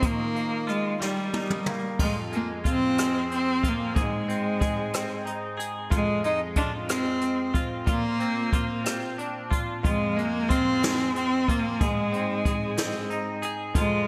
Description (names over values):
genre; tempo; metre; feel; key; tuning
six-eight pop ballad; 61 BPM (dotted quarters); 6/8; straight; unclear; A4 = 439 Hz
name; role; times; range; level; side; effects
clear cello; melody; 0.0-14.1 s; G3 to Eb4; -29 LUFS; equal; digital delay
direct-recorded clean electric guitar; accompaniment; 0.0-14.1 s; F2 to Ab4; -34 LUFS; equal; double-tracked
jazz brush drum kit; drums; 0.0-13.9 s; crash cymbal, hi-hat, kick drum, rim click, snare drum, toms; -31 LUFS; equal; gated reverb
room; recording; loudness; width
moderate lush hall reverb, RT60 1.9 s, studio reverb; bright 1980s-style digital production; -26 LUFS; mono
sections
0.0-2.0 A section; 2.0-14.1 B section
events
drum fill 1.0-2.0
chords
0.0 Ebadd9; 2.0 Fm; 4.0 Ab; 5.9 Fm; 7.9 Bbadd9; 9.8 Fm; 11.8 Ab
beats
| 0.03 1.01 | 2.00 2.99 | 3.97 4.94 | 5.92 6.89 | 7.87 8.85 | 9.84 10.83 | 11.81 12.78 | 13.75